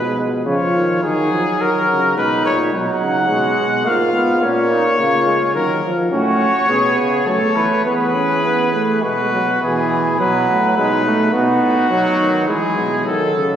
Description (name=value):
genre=classical, imitative canzona for brass ensemble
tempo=105 BPM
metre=3/4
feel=straight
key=E major from 6.1 s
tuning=A4 = 440 Hz
part: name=clear trumpet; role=melody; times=0.0-13.5 s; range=F#4 to F#5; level=-19 LUFS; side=left 3 dB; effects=none
part: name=warm flugelhorn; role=second line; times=0.0-13.1 s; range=C#4 to B4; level=-22 LUFS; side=right 2 dB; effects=none
part: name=mellow euphonium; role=bass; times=0.0-13.6 s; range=Ab2 to F#3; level=-22 LUFS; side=right 1 dB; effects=none
part: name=clear trombone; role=accompaniment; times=0.2-13.6 s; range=E3 to C#4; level=-19 LUFS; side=right 2 dB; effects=none
room=wet church reverb, RT60 2.7 s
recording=recorded on a phone in the room, studio reverb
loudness=-14 LUFS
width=side -9 dB against mid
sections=0.0-9.6 A section; 9.6-13.1 B section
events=none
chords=0.5 C#add9; 1.0 D#m; 2.2 G#m/B; 2.7 B; 3.9 Fdim/Ab; 4.4 A#m; 5.5 D#m; 6.1 F#m/A; 7.8 Bsus4/E; 9.0 B5; 9.6 E/B; 10.8 G#m/B; 11.3 B; 12.5 E; 13.1 D#dim